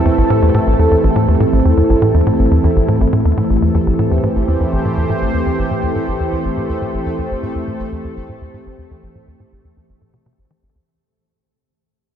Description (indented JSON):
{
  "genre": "ambient, sequencer-driven space music",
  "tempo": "122 BPM",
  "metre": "4/4",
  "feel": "straight",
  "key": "A minor",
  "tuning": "A4 = 440 Hz",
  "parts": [
    { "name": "sweeping resonant pad", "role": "sustained chords", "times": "0.0-10.9 s", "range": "E3 to C5", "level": "-17 LUFS", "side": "right 1 dB", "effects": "chorus" },
    { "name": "pulsing gated texture", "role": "texture", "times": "0.0-10.9 s", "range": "A3 to A4", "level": "-26 LUFS", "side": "left 3 dB", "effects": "chorus, built-in reverb" },
    { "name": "tight sequencer bass", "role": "riff", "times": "0.1-10.8 s", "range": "A1 to E3", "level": "-16 LUFS", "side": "equal", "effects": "analog chorus, ping-pong delay" }
  ],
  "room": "moderate huge ambient reverb, RT60 8.6 s",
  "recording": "cassette tape",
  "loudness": "-13 LUFS",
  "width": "side -9 dB against mid",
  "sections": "0.0-3.0 A section; 3.0-10.9 B section",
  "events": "fade-out 3.0-10.9; filter sweep on analog synth bass 3.0-10.9",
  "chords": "0.0 Am7"
}